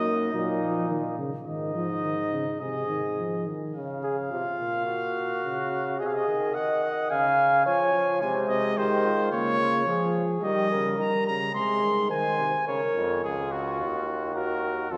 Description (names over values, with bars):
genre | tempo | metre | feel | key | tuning
classical, imitative canzona for brass ensemble | 107 BPM | 4/4 | straight | unclear | A4 = 439 Hz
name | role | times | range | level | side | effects
clear trumpet | melody | 0.0-15.0 s | Gb4 to C6 | -32 LUFS | equal | none
mellow flugelhorn | second line | 0.0-15.0 s | Eb4 to F5 | -31 LUFS | equal | none
dark trombone | accompaniment | 0.0-3.8, 8.2-12.7 s | C3 to Bb3 | -34 LUFS | equal | none
bright bass trombone | bass | 0.0-15.0 s | Db2 to F3 | -34 LUFS | equal | none
room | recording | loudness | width
wet church reverb, RT60 2.8 s | none | -26 LUFS | mono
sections
0.0-3.8 A section; 3.8-12.7 B section; 12.7-15.0 C section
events
none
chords
0.0 Ebm; 1.5 Ab5; 2.6 Ab; 3.8 Db; 4.9 Gbmaj7/Bb; 6.0 Ab/C; 7.1 Db; 8.2 Ab/C; 9.3 Bbm/Db; 10.4 Eb; 11.5 Ab/C; 12.7 Bbm; 13.8 Ebmadd9